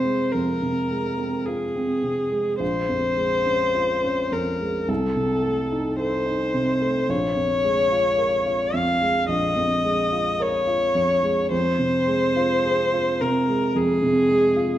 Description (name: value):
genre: classical, romantic duo for viola and grand piano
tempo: 54 BPM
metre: 4/4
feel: rubato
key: F minor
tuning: A4 = 439 Hz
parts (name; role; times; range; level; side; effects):
- rich viola; melody; 0.0-14.8 s; Ab4 to F5; -22 LUFS; left 2 dB; none
- warm baby grand piano; accompaniment; 0.0-14.8 s; Bb1 to Bb4; -24 LUFS; right 2 dB; none
room: wet recital hall reverb, RT60 1.4 s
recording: dark, warm production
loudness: -20 LUFS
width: side -12 dB against mid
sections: 0.0-14.8 A section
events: none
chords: 0.0 Fm; 2.6 Bbm7; 4.9 Adim/C; 7.1 Bbm7; 11.5 Fm